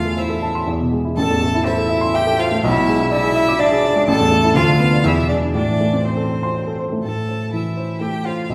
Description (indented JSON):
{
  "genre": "quick classical-period movement for piano trio",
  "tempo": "122 BPM",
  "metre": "3/4",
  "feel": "straight",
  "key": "A minor",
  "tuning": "A4 = 440 Hz",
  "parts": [
    { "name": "clear violin", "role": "melody", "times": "0.0-8.5 s", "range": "C5 to A5", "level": "-25 LUFS", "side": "equal", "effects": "none" },
    { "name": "rich cello", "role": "second line", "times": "0.0-8.5 s", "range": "C4 to A4", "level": "-25 LUFS", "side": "equal", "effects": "none" },
    { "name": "dark baby grand piano", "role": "accompaniment", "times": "0.0-8.5 s", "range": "A1 to D6", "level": "-20 LUFS", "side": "equal", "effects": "none" }
  ],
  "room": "wet recital hall reverb, RT60 1.6 s",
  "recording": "heard from further back in the room",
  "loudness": "-18 LUFS",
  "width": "mono",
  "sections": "0.0-7.0 A section; 7.0-8.5 A section",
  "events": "none",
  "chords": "0.0 Am/E; 0.7 E; 1.2 Am; 2.6 E7/B; 4.1 A5; 4.6 Bdim/D; 5.0 E7; 5.5 Am"
}